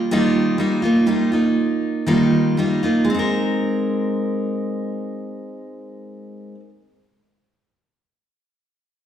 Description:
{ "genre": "folk", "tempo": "58-64 BPM", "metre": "4/4", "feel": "straight", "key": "Ab major", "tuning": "A4 = 439 Hz", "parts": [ { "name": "picked steel-string acoustic guitar", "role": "accompaniment", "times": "0.0-6.7 s", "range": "Eb3 to Bb4", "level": "-18 LUFS", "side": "equal", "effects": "none" } ], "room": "wet recital hall reverb, RT60 1.4 s", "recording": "recorded in a church or concert hall", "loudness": "-17 LUFS", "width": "side -9 dB against mid", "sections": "0.0-3.1 A section; 3.1-7.2 B section", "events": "slowing down 0.0-3.1", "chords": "0.0 Ebadd9; 3.1 Abadd9" }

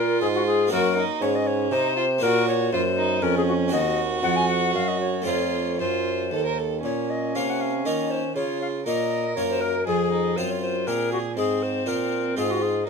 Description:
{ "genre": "classical, baroque-style sonata movement with continuo", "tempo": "119 BPM", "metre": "3/4", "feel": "straight", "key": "Bb minor", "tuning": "A4 = 440 Hz", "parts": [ { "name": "mellow tenor recorder", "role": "melody", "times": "0.0-12.9 s", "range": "Gb4 to Ab5", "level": "-25 LUFS", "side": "left 6 dB", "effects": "none" }, { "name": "rich violin", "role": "second line", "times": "0.0-12.9 s", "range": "C4 to Bb4", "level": "-27 LUFS", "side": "right 6 dB", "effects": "none" }, { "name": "harpsichord", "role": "accompaniment", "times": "0.0-12.9 s", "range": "Eb2 to Gb4", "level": "-29 LUFS", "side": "left 1 dB", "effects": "none" }, { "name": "mellow bassoon", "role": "bass", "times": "0.0-12.9 s", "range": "Eb2 to Eb3", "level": "-28 LUFS", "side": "right 3 dB", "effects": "none" } ], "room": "moderate studio ambience, RT60 0.5 s", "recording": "minimal, uncompressed stereo recording", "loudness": "-21 LUFS", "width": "side -5 dB against mid", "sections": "0.0-6.8 A section; 6.8-12.9 A section", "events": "none", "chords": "0.0 Fm/Ab; 0.7 Gb; 3.7 Cdim/Eb; 6.8 Bbm; 9.9 Fm; 11.4 Fm/Ab" }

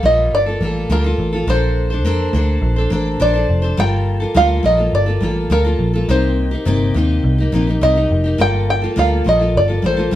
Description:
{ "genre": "indie pop, bedroom pop", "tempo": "104 BPM", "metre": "4/4", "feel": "straight", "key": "G minor", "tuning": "A4 = 440 Hz", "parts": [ { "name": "open-back banjo", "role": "melody", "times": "0.0-10.1 s", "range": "Bb4 to G5", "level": "-18 LUFS", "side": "equal", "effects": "none" }, { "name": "picked steel-string acoustic guitar", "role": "accompaniment", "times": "0.0-10.2 s", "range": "C3 to C5", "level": "-20 LUFS", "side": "left 1 dB", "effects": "vibrato effect" }, { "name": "vintage muted picked electric bass", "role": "bass", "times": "0.0-10.2 s", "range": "F1 to F2", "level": "-17 LUFS", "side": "equal", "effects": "none" } ], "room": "moderate studio reverb, RT60 0.8 s", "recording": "band playing live in one room", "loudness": "-14 LUFS", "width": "side -13 dB against mid", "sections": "0.0-10.2 A section", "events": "none", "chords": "0.0 Gm9; 1.5 Bbmaj9; 3.8 Gm9; 6.1 Cm7; 8.4 Gm9" }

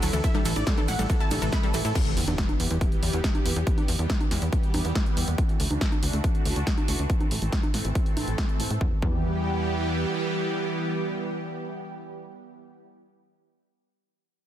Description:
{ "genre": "uplifting trance", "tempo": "140 BPM", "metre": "4/4", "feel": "straight", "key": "E minor", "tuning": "A4 = 437 Hz", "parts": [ { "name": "wide unison pluck", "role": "melody", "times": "0.0-1.9 s", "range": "A4 to B5", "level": "-32 LUFS", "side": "equal", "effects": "sidechain pumping, ping-pong delay" }, { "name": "supersaw pad", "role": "sustained chords", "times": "0.0-12.9 s", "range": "E3 to G4", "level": "-31 LUFS", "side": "right 1 dB", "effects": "phaser, sidechain pumping" }, { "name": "analog pluck", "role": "arpeggios", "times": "0.0-1.9 s", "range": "E3 to E4", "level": "-33 LUFS", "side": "left 2 dB", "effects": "chorus, sidechain pumping, dub echo" }, { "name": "tight sequencer bass", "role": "bass", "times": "0.0-10.1 s", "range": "A1 to A2", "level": "-27 LUFS", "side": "equal", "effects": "sidechain pumping" }, { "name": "punchy analog drum machine", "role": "drums", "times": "0.0-8.8 s", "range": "congas, crash cymbal, hi-hat, ride cymbal, shaker, snare drum", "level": "-31 LUFS", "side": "right 1 dB", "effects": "overdrive" }, { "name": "electronic kick drum", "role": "drums", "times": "0.2-9.2 s", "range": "none", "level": "-25 LUFS", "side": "equal", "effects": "none" }, { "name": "impact", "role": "sound effects", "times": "2.0-3.7 s", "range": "none", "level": "-34 LUFS", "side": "equal", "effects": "none" } ], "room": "light reverb, digital ambience", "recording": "dense, heavily limited modern master", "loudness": "-23 LUFS", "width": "side -11 dB against mid", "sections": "0.0-2.0 A section; 2.0-8.8 B section; 8.8-12.2 C section", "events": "drop 0.0-2.0; impact 2.0-3.7; filter sweep on analog synth bass 2.0-8.8", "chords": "0.2 Am; 2.0 Em; 5.4 Dadd9; 7.1 Am; 8.8 Em" }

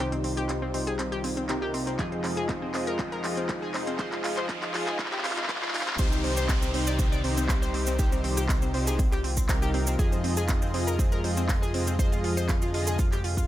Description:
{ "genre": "progressive house", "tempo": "120 BPM", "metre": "4/4", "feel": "straight", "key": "C minor", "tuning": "A4 = 438 Hz", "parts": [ { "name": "warm analog pad", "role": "sustained chords", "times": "0.0-13.5 s", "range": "C3 to G4", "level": "-36 LUFS", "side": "equal", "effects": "chorus, sidechain pumping" }, { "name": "analog pluck", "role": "arpeggios", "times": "0.0-13.5 s", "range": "C4 to D5", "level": "-33 LUFS", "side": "equal", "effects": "chorus, cassette tape, sidechain pumping, tape echo" }, { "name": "soft supersaw", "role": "stabs", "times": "0.0-13.0 s", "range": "C3 to Eb5", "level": "-32 LUFS", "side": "left 1 dB", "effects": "sidechain pumping, low-pass filter, tape echo" }, { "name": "round analog bass", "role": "bass", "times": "0.0-13.5 s", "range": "C2 to F2", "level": "-32 LUFS", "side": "equal", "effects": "sidechain pumping" }, { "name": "riser and downlifter", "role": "sound effects", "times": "1.3-10.0 s", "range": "none", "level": "-39 LUFS", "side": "equal", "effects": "none" }, { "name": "pop drum kit", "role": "drums", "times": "0.1-13.5 s", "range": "handclaps, hi-hat", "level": "-34 LUFS", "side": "equal", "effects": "studio reverb" }, { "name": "electronic kick drum", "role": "drums", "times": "2.0-13.5 s", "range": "none", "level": "-26 LUFS", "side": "equal", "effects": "studio reverb" }, { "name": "cabasa", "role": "percussion", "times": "6.0-13.5 s", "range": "none", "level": "-37 LUFS", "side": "right 5 dB", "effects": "none" } ], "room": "digital ambience", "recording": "high-pass filter", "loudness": "-24 LUFS", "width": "side -13 dB against mid", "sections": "0.0-6.0 A section; 6.0-13.5 B section", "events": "build-up 0.0-6.0; drum fill 0.0-6.0; filter sweep on supersaw synth 0.0-6.0; filter sweep 0.0-6.0; riser 1.3-6.0; drop 6.0-13.5", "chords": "0.0 Cm; 2.0 Fm7; 6.0 Cm; 10.0 Fm7" }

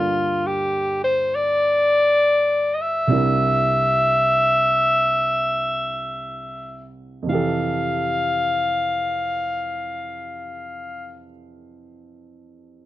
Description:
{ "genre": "jazz ballad", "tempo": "free time", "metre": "none", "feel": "none", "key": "F major", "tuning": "A4 = 441 Hz", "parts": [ { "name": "breathy alto saxophone", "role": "melody", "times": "0.0-11.2 s", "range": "F4 to F5", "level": "-19 LUFS", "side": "left 1 dB", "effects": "none" }, { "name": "warm grand piano", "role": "accompaniment", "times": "0.0-12.9 s", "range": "C2 to Bb4", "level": "-26 LUFS", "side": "right 3 dB", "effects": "none" } ], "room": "studio ambience", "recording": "dry, close 1970s-style studio recording", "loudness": "-18 LUFS", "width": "side -15 dB against mid", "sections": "0.0-7.3 A section; 7.3-12.0 B section", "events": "slowing down 0.0-7.3", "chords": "0.0 Gm9; 3.1 C9; 7.3 Fmaj9" }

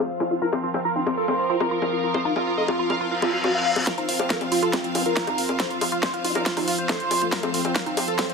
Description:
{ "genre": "psychedelic trance", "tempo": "139 BPM", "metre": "4/4", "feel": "straight", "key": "F major", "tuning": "A4 = 440 Hz", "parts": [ { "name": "overtone-sweeping drone", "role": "sustained chords", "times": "0.0-8.3 s", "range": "F3", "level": "-31 LUFS", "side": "left 1 dB", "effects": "chorus, built-in reverb, sidechain pumping" }, { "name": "woody wave-folded pluck", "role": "riff", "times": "0.0-8.3 s", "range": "Eb4 to F5", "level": "-28 LUFS", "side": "moving between left 6 dB and right 9 dB", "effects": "chorus, auto-pan, sidechain pumping, digital delay" }, { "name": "rich symphonic string section", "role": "texture", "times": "0.0-8.3 s", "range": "C4 to F5", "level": "-29 LUFS", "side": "right 1 dB", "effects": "sidechain pumping" }, { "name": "big-room dance drum kit", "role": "drums", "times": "0.2-8.3 s", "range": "bongos, hi-hat, snare drum", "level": "-27 LUFS", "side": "left 3 dB", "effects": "overdrive, high-pass filter on hats, high-pass filter on perc, high-pass filter on cymbals, high-pass filter on snare" }, { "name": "overdriven synth lead", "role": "melody", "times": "0.4-8.3 s", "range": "C4 to F5", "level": "-27 LUFS", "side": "equal", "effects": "distortion, chorus, phaser, sidechain pumping, digital delay" }, { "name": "reverse cymbal", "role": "sound effects", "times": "3.1-3.9 s", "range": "none", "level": "-27 LUFS", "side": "left 1 dB", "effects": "none" }, { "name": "electronic kick drum", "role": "drums", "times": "3.9-8.3 s", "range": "none", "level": "-24 LUFS", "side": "equal", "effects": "overdrive, high-pass filter on kick" }, { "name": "round analog bass", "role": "bass", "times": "4.0-8.3 s", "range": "Eb1 to F2", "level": "-48 LUFS", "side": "right 1 dB", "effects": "none" }, { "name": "vowel-sweep wobble bass", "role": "second line", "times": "5.0-7.6 s", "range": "A3 to Eb4", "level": "-35 LUFS", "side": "left 2 dB", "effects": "wide subtle chorus, sidechain pumping, high-pass filter, dub echo" } ], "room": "light reverb", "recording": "low-pass filter", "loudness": "-21 LUFS", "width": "side -4 dB against mid", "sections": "0.0-3.9 A section; 3.9-8.3 B section", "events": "filter sweep on drum 0.0-3.9; filter sweep 0.0-3.9; reverse cymbal 3.1-3.9; build-up 3.9-8.3; drum fill 3.9-8.3; filter sweep on synth arpeggio sound 3.9-8.3", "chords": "0.0 F5" }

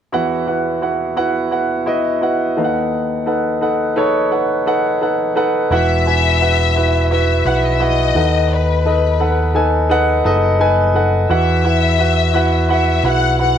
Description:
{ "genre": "pop", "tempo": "86 BPM", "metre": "4/4", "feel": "straight", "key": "unclear", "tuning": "A4 = 442 Hz", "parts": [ { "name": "warm concert grand piano", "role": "accompaniment", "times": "0.1-13.6 s", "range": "D#2 to G#5", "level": "-15 LUFS", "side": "right 1 dB", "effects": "none" }, { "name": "warm studio violin section", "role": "melody", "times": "5.7-13.6 s", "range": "B4 to F#5", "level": "-19 LUFS", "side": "left 10 dB", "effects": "none" }, { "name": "picked electric bass", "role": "bass", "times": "5.7-13.6 s", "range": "E1 to E2", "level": "-17 LUFS", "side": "equal", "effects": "none" } ], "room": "moderate echo chamber reverb, RT60 1.3 s, small room ambience", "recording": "none", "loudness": "-13 LUFS", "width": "side -8 dB against mid", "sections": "0.1-5.7 A section; 5.7-13.6 B section", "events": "none", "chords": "0.1 Esus2; 2.6 B7/D#; 5.7 Esus2; 8.2 B7/D#; 11.3 Esus2" }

